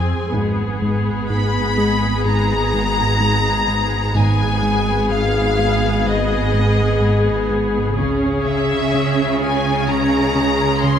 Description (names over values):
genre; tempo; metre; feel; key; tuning
cinematic, suspense film score; 63 BPM; 4/4; straight; unclear; A4 = 440 Hz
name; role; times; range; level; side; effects
rich studio violin section; melody; 0.0-11.0 s; Eb5 to C6; -22 LUFS; left 3 dB; none
rich studio viola section; accompaniment; 0.0-11.0 s; Cb4 to Ab4; -21 LUFS; left 1 dB; none
fat analog bass; riff; 0.0-11.0 s; F2 to Db4; -22 LUFS; left 2 dB; none
rich studio cello section; bass; 0.0-11.0 s; F2 to Db3; -23 LUFS; right 5 dB; none
analog drone; drone; 0.0-11.0 s; Ab1 to F2; -23 LUFS; right 1 dB; chorus
rich studio double bass section; bass; 0.3-8.9 s; Ab1 to Db2; -26 LUFS; right 4 dB; none
room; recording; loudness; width
moderate scoring stage reverb, RT60 2.0 s; none; -15 LUFS; side -8 dB against mid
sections
0.0-11.0 A section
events
none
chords
0.3 Abm; 8.0 Dbm